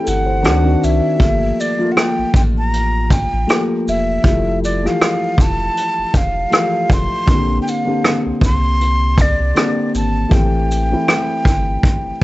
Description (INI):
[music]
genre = lo-fi hip hop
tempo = 79 BPM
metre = 4/4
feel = swing 57% on 16ths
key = G dorian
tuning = A4 = 443 Hz
[part]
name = breathy mellow silver concert flute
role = melody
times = 0.0-12.2 s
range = D5 to C6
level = -20 LUFS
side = right 1 dB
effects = none
[part]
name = felt-muted upright piano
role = accompaniment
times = 0.0-12.2 s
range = D3 to C5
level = -19 LUFS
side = left 2 dB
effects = cassette tape
[part]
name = warm sub bass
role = bass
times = 0.1-12.1 s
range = E1 to D2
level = -19 LUFS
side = equal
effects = none
[part]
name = vintage brush drum kit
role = drums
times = 0.1-12.2 s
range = hi-hat, kick drum, rim click, shaker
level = -15 LUFS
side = equal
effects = none
[sound]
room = light reverb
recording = vinyl crackle, nothing above 8.0 kHz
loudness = -13 LUFS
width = side -17 dB against mid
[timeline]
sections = 0.0-12.2 A section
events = break 0.0-1.2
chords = 0.4 D7b9; 1.2 Gm9; 4.2 Fmaj9; 7.3 Bb69; 10.3 Am7